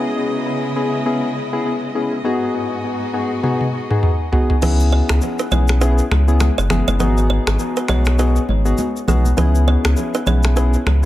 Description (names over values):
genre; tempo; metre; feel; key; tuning
afrobeats; 101 BPM; 4/4; swing 58% on 16ths; C# minor; A4 = 440 Hz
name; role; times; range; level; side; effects
soft electric-piano-like synth keys; accompaniment; 0.0-11.1 s; B3 to G#4; -20 LUFS; left 3 dB; chorus, analog delay
warm symphonic string section; sustained chords; 0.0-4.6 s; G#2 to D#5; -27 LUFS; right 2 dB; none
afro-pop drum kit; drums; 3.4-11.1 s; crash cymbal, finger snaps, rim click, shaker, toms; -22 LUFS; equal; none
kalimba; riff; 4.6-10.6 s; G#4 to C#5; -26 LUFS; right 5 dB; analog delay
saturated sub bass; bass; 4.6-11.1 s; F#1 to C#2; -15 LUFS; equal; none
congas; percussion; 4.6-11.0 s; none; -26 LUFS; right 2 dB; analog delay
room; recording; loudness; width
small room ambience; echo-heavy mix; -15 LUFS; side -14 dB against mid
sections
0.0-4.6 A section; 4.6-11.1 B section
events
drum fill 3.4-4.6; kick muted 4.6-11.1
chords
0.0 C#m7; 2.2 G#m7; 4.6 C#m7; 7.0 G#m7; 9.4 C#m7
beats
0.46 1.06 1.65 | 2.25 2.84 3.44 4.03 | 4.62 5.22 5.81 6.41 | 7.00 7.59 8.19 8.78 | 9.38 9.97 10.56